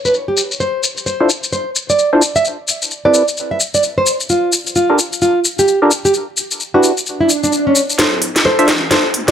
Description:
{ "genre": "UK garage, two-step garage", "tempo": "130 BPM", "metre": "4/4", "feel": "swing 61% on 16ths", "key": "D dorian", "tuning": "A4 = 440 Hz", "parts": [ { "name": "nylon-string guitar", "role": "melody", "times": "0.1-9.3 s", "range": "C#4 to E5", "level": "-15 LUFS", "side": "right 1 dB", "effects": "tape echo" }, { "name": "garage drum kit", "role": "drums", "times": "0.1-9.3 s", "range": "hi-hat, shaker, snare drum", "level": "-16 LUFS", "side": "left 2 dB", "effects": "high-pass filter on perc, low-pass filter on perc, high-pass filter on snare, low-pass filter on snare, high-pass filter on hats, low-pass filter on hats, high-pass filter on room, low-pass filter on room" }, { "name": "percussive organ stab", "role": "stabs", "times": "1.2-8.7 s", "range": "C4 to E5", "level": "-16 LUFS", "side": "equal", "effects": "analog chorus, tape echo" }, { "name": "swell and riser", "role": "sound effects", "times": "7.2-9.3 s", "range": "none", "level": "-21 LUFS", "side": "right 4 dB", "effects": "none" }, { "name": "deep soft wobble bass", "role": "bass", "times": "8.0-9.3 s", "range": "D1 to D2", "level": "-29 LUFS", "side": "equal", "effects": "chorus, high-pass filter" } ], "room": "moderate small room reverb, RT60 0.5 s", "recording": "dry, gritty hardware recording", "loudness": "-12 LUFS", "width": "side -8 dB against mid", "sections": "0.0-8.0 A section; 8.0-9.3 B section", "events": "swell 7.2-8.0; build-up 8.0-9.3; drum fill 8.0-9.3", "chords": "0.0 N.C.; 0.6 Dm7; 2.4 Am7; 4.1 Gm7; 6.1 Em7; 8.0 Dm7" }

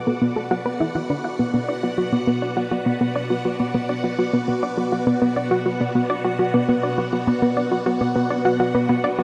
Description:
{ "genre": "ambient, sequencer-driven space music", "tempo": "102 BPM", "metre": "4/4", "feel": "straight", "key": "B minor", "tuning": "A4 = 440 Hz", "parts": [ { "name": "phased string machine", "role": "sustained chords", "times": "0.0-9.2 s", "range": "B2 to D5", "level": "-28 LUFS", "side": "equal", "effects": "ensemble chorus, phaser" }, { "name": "bubbling stepped-filter texture", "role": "texture", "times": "0.0-9.2 s", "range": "F#5", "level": "-37 LUFS", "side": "equal", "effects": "chorus, built-in reverb" }, { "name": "analog pluck", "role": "riff", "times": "0.1-9.2 s", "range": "B3 to F#5", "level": "-23 LUFS", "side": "equal", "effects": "chorus, analog delay" } ], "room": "wet huge ambient reverb, RT60 9.3 s", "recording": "dark, warm production", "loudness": "-22 LUFS", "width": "mono", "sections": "0.0-9.2 A section", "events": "fade-in on synth texture 0.0-9.2; filter sweep on synth arpeggio sound 0.0-9.2", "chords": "0.0 Bm" }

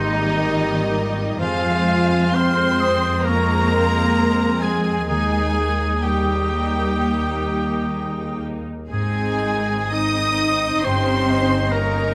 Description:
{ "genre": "classical", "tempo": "57-70 BPM", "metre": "4/4", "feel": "rubato", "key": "unclear", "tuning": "A4 = 441 Hz", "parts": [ { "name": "warm symphonic violin section", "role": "melody", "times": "0.0-12.1 s", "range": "Eb5 to Eb6", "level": "-29 LUFS", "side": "equal", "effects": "none" }, { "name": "rich symphonic violin section", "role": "second line", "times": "0.0-12.1 s", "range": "Eb4 to Eb5", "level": "-31 LUFS", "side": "equal", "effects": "none" }, { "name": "silver concert flute", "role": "second line", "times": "0.0-12.1 s", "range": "Eb5 to F6", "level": "-30 LUFS", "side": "equal", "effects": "none" }, { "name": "warm oboe", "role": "second line", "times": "0.0-12.1 s", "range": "Eb4 to Eb5", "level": "-29 LUFS", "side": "equal", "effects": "none" }, { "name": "rich studio viola section", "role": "accompaniment", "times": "0.0-12.1 s", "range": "G3 to Eb4", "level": "-30 LUFS", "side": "equal", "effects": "none" }, { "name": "dark French horn section", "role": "sustained chords", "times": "0.0-12.1 s", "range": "Eb3 to Eb4", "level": "-29 LUFS", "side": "equal", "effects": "none" }, { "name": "concert harp", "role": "arpeggios", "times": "0.0-12.1 s", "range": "G2 to Eb5", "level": "-32 LUFS", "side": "equal", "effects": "none" }, { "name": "rich symphonic double bass section", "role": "bass", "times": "0.0-12.1 s", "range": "G1 to F2", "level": "-27 LUFS", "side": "equal", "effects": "none" }, { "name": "warm symphonic cello section", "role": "bass", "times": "0.0-12.1 s", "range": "Eb3 to Eb4", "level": "-29 LUFS", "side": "equal", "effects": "none" } ], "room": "moderate concert hall reverb, RT60 1.8 s", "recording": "close, detailed microphones", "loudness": "-20 LUFS", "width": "mono", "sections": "0.0-12.1 A section", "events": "none", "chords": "0.0 Eb/Ab; 1.4 Fm; 5.1 Eb; 8.9 Ab; 10.8 Eb7/G" }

